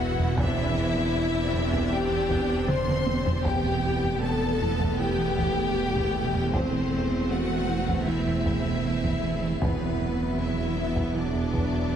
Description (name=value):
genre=cinematic, hybrid orchestral and electronic film score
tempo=78 BPM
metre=4/4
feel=straight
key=unclear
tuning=A4 = 440 Hz
part: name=warm symphonic violin section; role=melody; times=0.0-12.0 s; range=B4 to C6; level=-34 LUFS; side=left 4 dB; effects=none
part: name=dark symphonic violin section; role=second line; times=0.0-12.0 s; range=B3 to C5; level=-33 LUFS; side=left 3 dB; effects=none
part: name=rich symphonic viola section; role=accompaniment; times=0.0-12.0 s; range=F#3 to E4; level=-34 LUFS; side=right 3 dB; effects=none
part: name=icy glass pad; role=sustained chords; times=0.0-12.0 s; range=E3 to E5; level=-36 LUFS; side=right 1 dB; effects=chorus, built-in reverb
part: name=mellow French horn section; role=sustained chords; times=0.0-12.0 s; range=B3 to C5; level=-32 LUFS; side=left 4 dB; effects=none
part: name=fat analog bass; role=riff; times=0.0-12.0 s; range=E2 to E3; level=-33 LUFS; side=right 2 dB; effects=none
part: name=pure sine sub bass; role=bass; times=0.0-12.0 s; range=E1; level=-38 LUFS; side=equal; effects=none
part: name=rich symphonic double bass section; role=bass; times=0.0-12.0 s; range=E1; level=-32 LUFS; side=right 5 dB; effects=none
part: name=warm chamber cello section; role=bass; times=0.0-12.0 s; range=E2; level=-31 LUFS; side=right 2 dB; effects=none
part: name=solo taiko drums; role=drums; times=0.2-12.0 s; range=none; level=-31 LUFS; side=equal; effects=none
room=wet concert hall reverb, RT60 2.0 s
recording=heavily compressed radio sound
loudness=-23 LUFS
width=side -9 dB against mid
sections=0.0-12.0 A section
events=drum fill 2.7-3.5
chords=0.4 Cadd9/E; 3.5 Gadd9/E; 6.5 Am/E; 9.6 Esus2